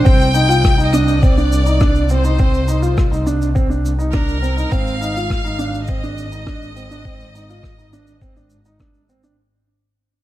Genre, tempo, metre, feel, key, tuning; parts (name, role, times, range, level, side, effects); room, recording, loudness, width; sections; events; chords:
piano and strings electronica; 103 BPM; 4/4; straight; A4 = 440 Hz
dark baby grand piano; riff; 0.0-9.3 s; C4 to F4; -20 LUFS; right 2 dB
rich symphonic double bass section; bass; 0.0-9.4 s; Ab1 to C2; -19 LUFS; equal; sidechain pumping
bright chamber violin section; melody; 0.1-8.8 s; Bb4 to G5; -23 LUFS; left 2 dB
electronic kick drum; drums; 0.1-8.9 s; -15 LUFS; equal
shaker and rim click; drums; 0.1-9.4 s; -30 LUFS; equal
light reverb; dark, warm production; -14 LUFS; side -15 dB against mid
0.0-9.4 A section
drop 0.0-9.4; fade-out 0.1-9.4
0.1 Cm; 4.7 Ab6